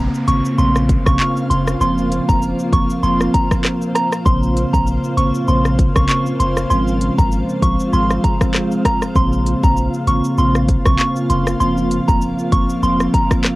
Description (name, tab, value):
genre	dancehall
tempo	98 BPM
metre	4/4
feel	swing 56% on 16ths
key	Bb minor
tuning	A4 = 439 Hz
part	marimba with medium mallets	accompaniment	0.0-13.4 s	Db3 to C4	-19 LUFS	equal	sidechain pumping, cassette tape
part	granular cloud pad	sustained chords	0.1-13.6 s	Db3 to F5	-24 LUFS	equal	built-in reverb, sidechain pumping, cassette tape
part	punchy sub bass	bass	0.0-13.1 s	F1 to Bb1	-19 LUFS	equal	none
part	downlifter	sound effects	0.0-4.3 s	none	-35 LUFS	equal	none
part	afro-pop drum kit	drums	0.1-13.6 s	handclaps, hi-hat, kick drum, rim click, shaker	-18 LUFS	equal	cassette tape
part	soft synth bell	melody	0.3-13.3 s	Bb5 to Db6	-21 LUFS	right 1 dB	chorus
room	light reverb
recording	home recording on cassette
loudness	-14 LUFS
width	side -20 dB against mid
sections	0.0-13.6 A section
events	none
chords	0.0 Bbmadd9; 1.8 Fsus4; 4.3 Bbmadd9; 6.7 Fm/Ab; 9.2 Bbmadd9; 11.6 Fsus4